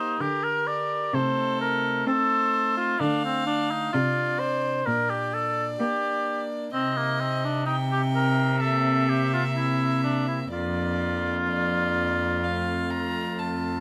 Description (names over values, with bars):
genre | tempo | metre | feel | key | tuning
classical, baroque-style sonata movement with continuo | 64 BPM | 4/4 | straight | Bb major | A4 = 445 Hz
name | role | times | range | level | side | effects
warm violin | melody | 0.0-13.8 s | A4 to Bb5 | -34 LUFS | equal | none
warm oboe | second line | 0.0-13.8 s | Bb3 to D5 | -28 LUFS | equal | none
pipe organ, foundations | accompaniment | 0.0-13.8 s | F2 to G4 | -35 LUFS | equal | none
rich cello | bass | 0.0-13.8 s | F2 to C4 | -31 LUFS | equal | none
room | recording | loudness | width
moderate studio ambience, RT60 0.5 s | none | -25 LUFS | mono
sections
0.0-13.8 A section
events
none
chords
0.0 Eb; 1.1 Adim/C; 3.0 Dm; 4.9 Bb6; 6.7 Cm; 8.6 C7; 10.5 Bb/F; 12.4 F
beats
0.21 1.14 2.07 | 3.00 3.94 4.87 5.80 | 6.73 7.67 8.61 9.55 | 10.51 11.48 12.44 13.39